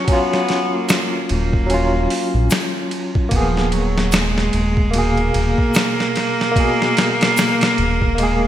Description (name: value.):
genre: trip hop.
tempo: 74 BPM.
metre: 4/4.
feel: swing 59% on 16ths.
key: unclear.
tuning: A4 = 439 Hz.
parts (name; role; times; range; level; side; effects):
bright cello; melody; 0.0-8.5 s; F3 to Cb4; -21 LUFS; right 1 dB; tape echo.
barky tine electric piano; accompaniment; 0.0-8.5 s; Cb3 to Ab4; -20 LUFS; equal; tremolo, tape echo.
boom bap sampler-style drum kit; drums; 0.1-8.4 s; hi-hat, kick drum, ride cymbal, snare drum; -20 LUFS; equal; gated reverb.
egg shaker; percussion; 0.9-7.6 s; none; -32 LUFS; left 10 dB; none.
round analog bass; bass; 1.3-8.5 s; Eb1 to Bb1; -20 LUFS; equal; tube saturation.
room: moderate lush hall reverb, RT60 2.1 s.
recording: bright 1980s-style digital production.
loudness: -15 LUFS.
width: side -11 dB against mid.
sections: 0.0-8.5 A section.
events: none.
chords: 0.0 Ebm7; 3.3 Abmadd9/Eb.